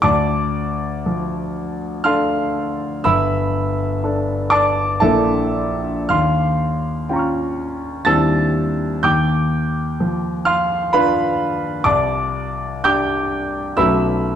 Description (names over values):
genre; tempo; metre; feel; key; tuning
classical, impressionist solo piano; 52-67 BPM; 3/4; rubato; D minor; A4 = 440 Hz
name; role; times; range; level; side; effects
clear concert grand piano; solo; 0.0-14.4 s; G1 to A6; -16 LUFS; equal; none
room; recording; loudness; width
wet recital hall reverb, RT60 1.6 s; dark, warm production; -16 LUFS; side -9 dB against mid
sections
0.0-14.4 A section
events
none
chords
0.0 Dm7; 3.1 G69; 5.0 Bbmaj7#11; 6.1 Eb9; 8.1 C69/Eb; 9.0 Dm6/Eb; 11.8 Csus2; 13.8 B9sus4